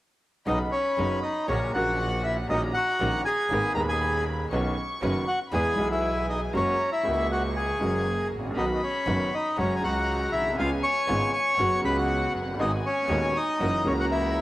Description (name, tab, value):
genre	tango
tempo	119 BPM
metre	4/4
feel	rubato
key	B major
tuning	A4 = 440 Hz
part	bandoneon	melody	0.5-14.4 s	C#4 to C#6	-26 LUFS	left 1 dB	none
part	warm chamber violin section	second line	0.5-14.4 s	F#5 to C#6	-36 LUFS	left 2 dB	cassette tape
part	clear upright piano	accompaniment	0.5-14.4 s	D#1 to G#4	-30 LUFS	equal	cassette tape
part	rich chamber string section	stabs	0.5-14.4 s	G#3 to B4	-38 LUFS	right 2 dB	none
part	clear double bass	bass	0.5-14.4 s	F#1 to E2	-31 LUFS	right 1 dB	none
room	light reverb, small room ambience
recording	home recording on cassette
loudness	-23 LUFS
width	side -16 dB against mid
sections	0.5-14.4 A section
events	none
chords	0.5 Badd9; 1.5 F#/A#; 2.5 D#m7/A#; 3.5 G#madd9; 4.5 Badd9; 5.5 E; 6.5 F#add9; 8.6 B; 9.6 F#sus2; 10.6 C#7; 11.6 F#sus4; 12.6 G#m7; 13.6 F#7